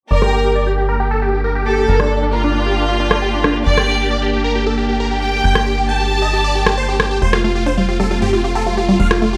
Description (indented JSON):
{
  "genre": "uplifting trance",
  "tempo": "135 BPM",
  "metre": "4/4",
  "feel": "straight",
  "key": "G minor",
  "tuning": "A4 = 440 Hz",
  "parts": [
    { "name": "big supersaw lead", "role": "melody", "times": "0.1-9.4 s", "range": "D4 to G5", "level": "-22 LUFS", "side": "equal", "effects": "phaser, low-pass filter" },
    { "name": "clear studio violin section", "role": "second line", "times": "0.1-7.1 s", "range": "F4 to A5", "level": "-22 LUFS", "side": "equal", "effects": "delay" },
    { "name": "clear studio string section", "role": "sustained chords", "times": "0.1-9.4 s", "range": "A3 to G4", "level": "-26 LUFS", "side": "equal", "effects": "low-pass filter" },
    { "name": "tight sequencer bass", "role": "bass", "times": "0.1-9.4 s", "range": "F1 to G1", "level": "-22 LUFS", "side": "equal", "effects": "none" },
    { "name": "electronic rim click", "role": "drums", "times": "0.2-9.2 s", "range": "none", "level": "-20 LUFS", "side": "equal", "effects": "low-pass filter on snare, low-pass filter on room" },
    { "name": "unison pluck", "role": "arpeggios", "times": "7.2-9.4 s", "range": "G2 to G4", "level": "-21 LUFS", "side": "equal", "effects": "none" }
  ],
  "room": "light reverb",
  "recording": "none",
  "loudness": "-16 LUFS",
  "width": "mono",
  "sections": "0.1-9.4 A section",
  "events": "filter sweep on drum 0.1-9.4; filter sweep on supersaw synth 0.1-9.4; filter sweep on string section 0.1-9.4",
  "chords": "0.1 Gm; 7.2 F",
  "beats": "| 0.11 0.55 1.00 1.44 | 1.89 2.33 2.77 3.22 | 3.66 4.11 4.55 5.00 | 5.44 5.89 6.33 6.78 | 7.22 7.66 8.11 8.55 | 9.00"
}